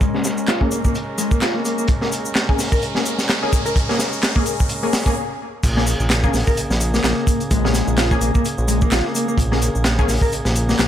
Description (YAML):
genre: breakbeat, breaks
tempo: 128 BPM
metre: 4/4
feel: swing 57% on 16ths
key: Bb minor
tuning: A4 = 438 Hz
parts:
  - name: tonewheel organ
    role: sustained chords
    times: 0.0-10.9 s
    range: Db3 to Bb4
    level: -28 LUFS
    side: right 2 dB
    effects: overdrive, sidechain pumping, low-pass filter
  - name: mellow electric guitar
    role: riff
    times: 0.0-10.9 s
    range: Ab3 to Bb4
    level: -24 LUFS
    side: left 1 dB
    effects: overdrive, low-pass filter, dub echo
  - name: crunchy breakbeat drum kit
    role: drums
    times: 0.0-10.9 s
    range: crash cymbal, hi-hat, kick drum, snare drum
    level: -20 LUFS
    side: equal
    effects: low-pass filter on kick, low-pass filter on hats, low-pass filter on cymbals, low-pass filter on snare, low-pass filter on room
  - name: electronic shaker and handclaps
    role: drums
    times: 0.0-10.9 s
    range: none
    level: -27 LUFS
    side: left 1 dB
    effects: high-pass filter on perc, high-pass filter on snare, high-pass filter on room
  - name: riser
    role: sound effects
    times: 0.7-5.2 s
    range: none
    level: -30 LUFS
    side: equal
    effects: none
  - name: orchestra-hit-like synth stab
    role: stabs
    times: 0.1-10.1 s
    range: Bb3 to Ab4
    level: -26 LUFS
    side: left 3 dB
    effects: built-in reverb, phaser, dub echo
  - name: fat analog bass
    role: bass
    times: 5.6-10.9 s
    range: Bb1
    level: -20 LUFS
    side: equal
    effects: none
room: little or no reverb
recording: none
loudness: -16 LUFS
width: side -10 dB against mid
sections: 0.0-5.6 A section; 5.6-10.9 B section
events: build-up 0.0-5.6; filter sweep on drum 0.0-5.6; filter sweep on synth stab 0.0-5.6; filter sweep on tonewheel organ 0.0-5.6; riser 0.7-5.2; stop 5.2-5.6; drop 5.6-10.9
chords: 0.0 Bbm7